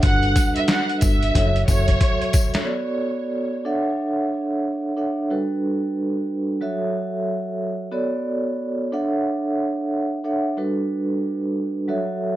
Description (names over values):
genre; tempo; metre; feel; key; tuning
hip hop, boom-bap hip-hop; 91 BPM; 4/4; swing 62% on 16ths; unclear; A4 = 441 Hz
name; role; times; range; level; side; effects
warm symphonic violin section; melody; 0.0-2.6 s; C#5 to F#5; -25 LUFS; right 1 dB; high-pass filter, low-pass filter, ping-pong delay
vibraphone with soft mallets; accompaniment; 0.0-12.4 s; F#3 to F#5; -22 LUFS; right 1 dB; cassette tape, high-pass filter, low-pass filter
deep dub fingered electric bass; bass; 0.0-2.0 s; F#1 to G1; -21 LUFS; left 1 dB; none
trip hop sampler-style drum kit; drums; 0.0-2.7 s; hi-hat, kick drum, snare drum; -20 LUFS; equal; none
tambourine; percussion; 0.4-2.5 s; none; -32 LUFS; left 5 dB; none
room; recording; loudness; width
light reverb; none; -20 LUFS; side -14 dB against mid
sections
0.0-2.7 A section; 2.7-12.4 B section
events
drum fill 1.4-2.7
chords
0.0 Gmaj7; 1.4 F#m7; 2.7 Bm9; 3.7 Dmaj7; 5.3 Gmaj7; 6.6 F#m7; 7.9 Bm9; 8.9 Dmaj7; 10.6 Gmaj7